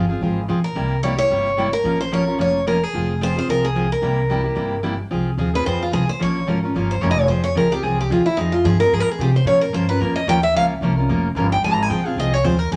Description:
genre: acoustic string swing (jazz manouche)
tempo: 221 BPM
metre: 4/4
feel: swing 56% on 8ths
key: F minor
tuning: A4 = 440 Hz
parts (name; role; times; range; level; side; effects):
- picked steel-string acoustic guitar; melody; 0.0-12.8 s; Eb4 to Bb5; -23 LUFS; equal; none
- picked steel-string acoustic guitar; accompaniment; 0.0-12.8 s; C3 to Bb4; -24 LUFS; equal; none
- upright bass; bass; 0.0-12.8 s; F1 to C3; -25 LUFS; equal; none
room: moderate large studio reverb, RT60 1.0 s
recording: none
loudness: -19 LUFS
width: mono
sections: 0.0-5.1 A section; 5.1-12.8 B section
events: steel-string acoustic guitar solo 5.1-12.8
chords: 0.0 Fm; 0.8 C7b9; 1.9 Bbm; 2.9 Fm; 4.0 C7; 5.1 Fm; 6.2 Bbm; 7.3 Fm; 9.5 Bbm; 11.6 Fm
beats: 0.21 0.48 | 0.76 1.03 1.30 1.58 | 1.85 2.12 2.40 2.67 | 2.94 3.21 3.49 3.76 | 4.03 4.30 4.58 4.85 | 5.12 5.39 5.66 5.93 | 6.21 6.48 6.75 7.02 | 7.29 7.56 7.83 8.11 | 8.38 8.65 8.92 9.19 | 9.46 9.73 10.00 10.27 | 10.54 10.81 11.09 11.36 | 11.63 11.90 12.17 12.44 | 12.71

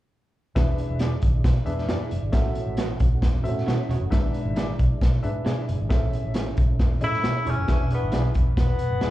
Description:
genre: uptempo 1960s-style soul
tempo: 135 BPM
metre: 4/4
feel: straight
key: E mixolydian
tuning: A4 = 440 Hz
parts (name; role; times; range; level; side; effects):
- warm upright piano; accompaniment; 0.6-8.5 s; G#2 to E5; -33 LUFS; left 2 dB; slapback echo
- percussive tonewheel organ; sustained chords; 0.6-7.7 s; G#3 to F#4; -38 LUFS; right 3 dB; none
- vintage muted fingered electric bass; bass; 0.6-9.1 s; E1 to B2; -26 LUFS; equal; none
- raw garage drum kit; drums; 0.6-9.1 s; hi-hat, kick drum, snare drum; -23 LUFS; equal; none
- electric guitar through a small old amp; stabs; 1.0-9.1 s; E4 to D5; -36 LUFS; right 4 dB; slapback echo
- breathy tenor saxophone; melody; 7.0-9.1 s; B3 to E4; -27 LUFS; left 3 dB; slapback echo, tape echo
room: little or no reverb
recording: live gig heard through the venue's PA, cassette tape, club reverb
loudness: -21 LUFS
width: side -15 dB against mid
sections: 0.6-7.7 A section; 7.7-9.1 B section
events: none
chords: 0.6 E7; 2.3 A6; 4.1 E7/G#; 5.9 Amaj7; 7.7 E7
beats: | 0.56 1.00 1.45 1.89 | 2.34 2.78 3.23 3.67 | 4.12 4.56 5.01 5.45 | 5.90 6.34 6.79 7.23 | 7.68 8.12 8.57 9.02

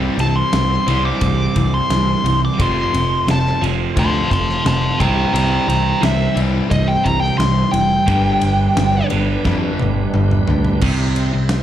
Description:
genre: classic rock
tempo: 88 BPM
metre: 4/4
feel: straight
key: C major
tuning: A4 = 439 Hz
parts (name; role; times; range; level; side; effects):
- tonewheel organ; sustained chords; 0.0-11.6 s; G3 to C5; -30 LUFS; equal; overdrive, chorus vibrato, slow rotary speaker
- overdriven electric guitar; riff; 0.0-11.6 s; F2 to G3; -22 LUFS; left 6 dB; none
- overdriven electric guitar; riff; 0.0-11.6 s; F2 to C4; -22 LUFS; right 9 dB; slapback echo
- modern bright picked electric bass; bass; 0.0-11.6 s; F1 to F2; -20 LUFS; equal; none
- bluesy overdriven lead guitar; melody; 0.2-9.1 s; Eb5 to D6; -19 LUFS; left 1 dB; distortion, slapback echo
- big rock drum kit; drums; 0.2-11.6 s; crash cymbal, kick drum, ride cymbal, snare drum, toms; -23 LUFS; equal; none
room: little or no reverb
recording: live gig heard through the venue's PA, club reverb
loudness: -14 LUFS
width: side -11 dB against mid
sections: 0.0-10.8 A section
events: lead electric guitar solo 0.0-10.8; drum fill 9.5-10.8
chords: 0.0 C; 2.6 F; 5.0 C; 8.1 G; 10.8 C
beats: 0.54 1.22 1.91 | 2.60 3.28 3.97 4.66 | 5.34 6.03 6.71 7.40 | 8.09 8.77 9.46 10.14 | 10.83 11.51

